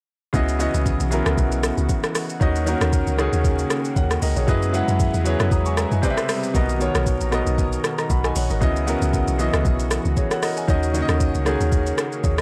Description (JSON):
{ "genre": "amapiano", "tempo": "116 BPM", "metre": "4/4", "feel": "swing 55% on 16ths", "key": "C# dorian", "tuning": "A4 = 441 Hz", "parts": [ { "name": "clear concert grand piano", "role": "accompaniment", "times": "0.3-12.4 s", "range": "B2 to D#6", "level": "-26 LUFS", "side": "equal", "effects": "none" }, { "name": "lush unison pad", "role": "sustained chords", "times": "0.3-12.4 s", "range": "C3 to D#5", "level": "-32 LUFS", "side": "equal", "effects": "chorus" }, { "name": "deep log drum bass", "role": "bass", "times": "0.3-12.4 s", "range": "G#1 to F#2", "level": "-25 LUFS", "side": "equal", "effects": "none" }, { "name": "smooth R&B drum kit", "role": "drums", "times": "0.3-12.4 s", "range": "hi-hat, kick drum, rim click, shaker", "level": "-26 LUFS", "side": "equal", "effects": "none" } ], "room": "digital ambience", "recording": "dry, gritty hardware recording, cassette tape", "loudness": "-21 LUFS", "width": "mono", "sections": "0.3-12.4 A section", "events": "drop 0.3-12.4", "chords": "0.3 C#m11; 2.4 D#m7; 4.5 F#13sus4; 6.0 Cmaj7; 6.5 Bmaj7; 8.6 C#m11; 10.7 D#m7" }